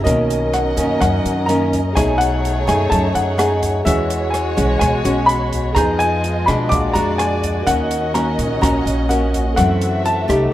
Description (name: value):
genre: bossa nova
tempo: 126 BPM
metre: 4/4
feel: straight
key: B major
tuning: A4 = 440 Hz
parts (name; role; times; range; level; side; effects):
- dark baby grand piano; melody; 0.0-10.5 s; D#5 to D6; -21 LUFS; left 1 dB; none
- nylon-string guitar; accompaniment; 0.0-10.5 s; F#2 to G#4; -20 LUFS; left 1 dB; none
- tine electric piano; accompaniment; 0.0-10.5 s; F#4 to G6; -27 LUFS; right 2 dB; medium stereo tremolo
- dark symphonic violin section; sustained chords; 0.0-10.5 s; G#3 to E5; -24 LUFS; equal; none
- upright bass; bass; 0.0-10.5 s; A#1 to Cb3; -22 LUFS; equal; none
- open jazz drum kit; drums; 0.1-10.4 s; hi-hat, kick drum, rim click; -24 LUFS; right 1 dB; none
room: light reverb, small room reverb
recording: rough home demo mix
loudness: -15 LUFS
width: side -13 dB against mid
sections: 0.1-10.5 A section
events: none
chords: 0.1 Bmaj9; 2.0 B13; 3.9 E69; 5.8 Fm7b5; 6.7 A#7b13; 7.7 D#m7; 9.6 F#m7b5